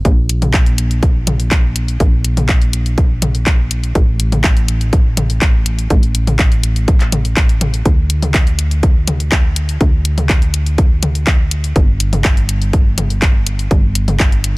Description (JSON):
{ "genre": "melodic techno", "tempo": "123 BPM", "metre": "4/4", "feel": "straight", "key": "unclear", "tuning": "A4 = 444 Hz", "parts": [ { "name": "tight sequencer bass", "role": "bass", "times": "0.0-14.6 s", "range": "G1 to D2", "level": "-16 LUFS", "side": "equal", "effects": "tube saturation, sidechain pumping" }, { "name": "electronic kick drum", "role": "drums", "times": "0.1-14.3 s", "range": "none", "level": "-12 LUFS", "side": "equal", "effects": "none" }, { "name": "house drum kit", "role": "drums", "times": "0.1-14.5 s", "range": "handclaps, hi-hat, toms", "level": "-20 LUFS", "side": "left 1 dB", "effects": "sidechain pumping on hats, sidechain pumping on toms" } ], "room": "little or no reverb", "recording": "none", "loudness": "-12 LUFS", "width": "side -23 dB against mid", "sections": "0.0-14.6 A section", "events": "none", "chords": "none" }